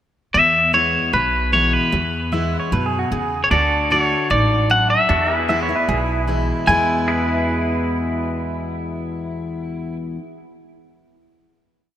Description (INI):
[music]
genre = honky-tonk and classic country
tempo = 152 BPM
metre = 4/4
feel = straight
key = E mixolydian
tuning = A4 = 440 Hz
[part]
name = twangy electric guitar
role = melody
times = 0.3-10.0 s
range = B4 to G#5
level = -17 LUFS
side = equal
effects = none
[part]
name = picked steel-string acoustic guitar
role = accompaniment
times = 0.3-10.2 s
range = E2 to F#4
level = -24 LUFS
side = left 3 dB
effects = none
[part]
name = upright bass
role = bass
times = 0.3-10.0 s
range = A1 to F#2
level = -24 LUFS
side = equal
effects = none
[part]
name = pedal steel guitar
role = second line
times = 2.3-10.0 s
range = E4 to E5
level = -27 LUFS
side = right 4 dB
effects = none
[part]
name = pedal steel guitar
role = sustained chords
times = 3.5-10.4 s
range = D4 to B4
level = -24 LUFS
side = right 1 dB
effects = none
[sound]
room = moderate lush hall reverb, RT60 2.6 s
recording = rough home demo mix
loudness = -16 LUFS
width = side -11 dB against mid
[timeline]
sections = 0.3-6.7 verse; 6.7-9.8 final chord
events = none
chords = 0.3 E; 3.5 D; 5.1 E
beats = | 0.34 0.74 1.14 1.53 | 1.93 2.33 2.72 3.12 | 3.51 3.91 4.30 4.70 | 5.09 5.49 5.89 6.28 | 6.68 7.07 7.47 7.87 | 8.26 8.66 9.05 9.45